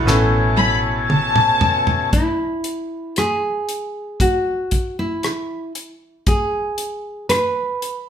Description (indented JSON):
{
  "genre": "pop ballad",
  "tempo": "58 BPM",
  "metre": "4/4",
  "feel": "straight",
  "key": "A major",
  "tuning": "A4 = 440 Hz",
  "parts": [
    { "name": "nylon-string guitar", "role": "melody", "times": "0.0-8.1 s", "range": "E4 to B4", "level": "-22 LUFS", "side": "right 1 dB", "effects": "none" },
    { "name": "bright concert grand piano", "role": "accompaniment", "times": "0.0-2.2 s", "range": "A2 to A4", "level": "-24 LUFS", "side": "left 1 dB", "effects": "none" },
    { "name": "overdriven tonewheel organ", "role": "sustained chords", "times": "0.0-2.1 s", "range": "B2 to C#4", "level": "-21 LUFS", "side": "left 2 dB", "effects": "slow rotary speaker" },
    { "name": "vintage muted fingered electric bass", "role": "bass", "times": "0.0-1.6 s", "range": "A1", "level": "-20 LUFS", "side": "equal", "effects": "none" },
    { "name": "damped 70s drum kit", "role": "drums", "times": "0.1-8.1 s", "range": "hi-hat, kick drum, rim click, snare drum, toms", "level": "-21 LUFS", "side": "equal", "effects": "none" },
    { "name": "warm studio violin section", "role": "second line", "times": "0.6-2.1 s", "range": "A5 to B5", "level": "-19 LUFS", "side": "left 3 dB", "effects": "none" }
  ],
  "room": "wet large studio reverb, RT60 0.9 s",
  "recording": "band playing live in one room",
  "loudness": "-17 LUFS",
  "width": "side -8 dB against mid",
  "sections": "0.0-2.1 A section; 2.1-8.1 B section",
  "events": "drum fill 0.1-2.1",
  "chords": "0.1 Aadd9; 2.1 N.C.",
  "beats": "0.06 1.10 | 2.13 3.17 4.20 5.24 | 6.27 7.30"
}